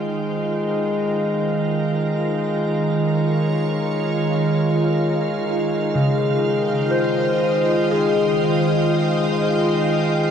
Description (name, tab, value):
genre	ambient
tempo	free time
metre	none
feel	none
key	unclear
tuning	A4 = 437 Hz
part	soft additive organ-like pad	sustained chords	0.0-10.3 s	Eb3 to G5	-20 LUFS	right 1 dB	ensemble chorus, built-in reverb
part	hand-pumped harmonium	drone	0.0-10.3 s	Ab3	-23 LUFS	left 1 dB	none
part	concert harp	arpeggios	5.9-10.3 s	Db3 to C5	-21 LUFS	left 3 dB	diffuse ambient delay
room	wet cathedral reverb, RT60 5.9 s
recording	dark, warm production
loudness	-18 LUFS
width	side -8 dB against mid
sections	0.0-10.3 A section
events	fade-in on ambient pad 0.0-10.3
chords	0.0 Fm9/Eb; 2.6 Eb9sus4; 5.6 Dbmaj9#11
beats	free time